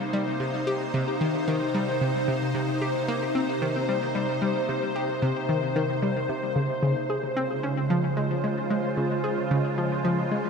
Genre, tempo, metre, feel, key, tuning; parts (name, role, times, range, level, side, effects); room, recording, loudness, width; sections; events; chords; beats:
ambient, sequencer-driven space music; 112 BPM; 4/4; straight; A4 = 441 Hz
evolving wavetable pad; sustained chords; 0.0-10.5 s; C3 to C5; -26 LUFS; equal; ensemble chorus, built-in reverb
bubbling stepped-filter texture; texture; 0.0-10.5 s; C5 to C6; -41 LUFS; left 1 dB
analog pluck; riff; 0.1-10.4 s; C3 to Ab4; -28 LUFS; left 1 dB; chorus, ping-pong delay
wet huge ambient reverb, RT60 8.6 s; -24 LUFS; side -5 dB against mid
0.0-10.5 A section
0.0 Cm7; 6.6 Dbmaj7
| 0.13 0.67 1.21 1.74 | 2.28 2.81 3.35 3.88 | 4.42 4.96 5.49 6.03 | 6.56 7.10 7.63 8.17 | 8.71 9.24 9.78 10.31